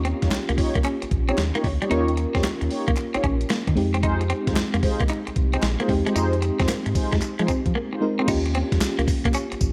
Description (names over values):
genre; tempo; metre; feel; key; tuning
R&B, new jack swing; 113 BPM; 4/4; swing 66% on 16ths; unclear; A4 = 440 Hz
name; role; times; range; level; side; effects
FM electric piano with tremolo; accompaniment; 0.0-9.7 s; Ab3 to Bb4; -30 LUFS; equal; none
clean electric guitar; riff; 0.0-9.5 s; G3 to Eb4; -31 LUFS; equal; lush chorus
round analog bass; bass; 0.0-9.7 s; Bb1 to F3; -28 LUFS; equal; none
clean 12-bit digital drum machine; drums; 0.0-9.7 s; crash cymbal, hi-hat, kick drum, snare drum, tambourine; -28 LUFS; equal; none
mellow synth brass; stabs; 0.2-8.3 s; Eb4 to Db5; -32 LUFS; equal; chorus, tape echo
group handclap; percussion; 0.3-9.5 s; none; -42 LUFS; equal; none
room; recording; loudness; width
light reverb; none; -23 LUFS; mono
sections
0.0-8.3 A section; 8.3-9.7 B section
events
none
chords
0.0 Eb9; 3.8 Fm7; 8.3 Eb9